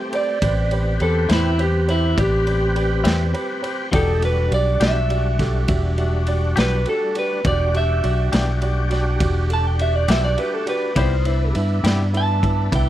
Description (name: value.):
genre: slow blues.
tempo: 68 BPM (dotted quarters).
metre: 12/8.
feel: straight.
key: E minor.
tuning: A4 = 439 Hz.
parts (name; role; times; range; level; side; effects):
dark grand piano; accompaniment; 0.0-12.9 s; E4 to E5; -28 LUFS; right 3 dB; none.
overdriven tonewheel organ; sustained chords; 0.0-12.9 s; G3 to B4; -28 LUFS; equal; slow rotary speaker, chorus vibrato.
raw garage drum kit; drums; 0.1-12.9 s; kick drum, ride cymbal, snare drum; -25 LUFS; equal; none.
electric guitar through a small old amp; melody; 0.2-12.9 s; E4 to A5; -23 LUFS; right 1 dB; none.
fingered electric bass; bass; 0.4-12.9 s; E1 to G2; -20 LUFS; equal; none.
clean electric guitar; accompaniment; 1.3-12.0 s; A2 to G4; -26 LUFS; left 6 dB; tremolo.
room: studio reverb.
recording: dry, close 1970s-style studio recording.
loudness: -17 LUFS.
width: side -13 dB against mid.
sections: 0.0-12.9 A section.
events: clean electric guitar solo 0.0-12.9.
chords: 0.0 Am7; 3.9 Em7; 11.0 Cmaj7.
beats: | 0.43 1.30 2.18 3.06 | 3.94 4.81 5.69 6.57 | 7.45 8.33 9.21 10.09 | 10.96 11.85 12.73.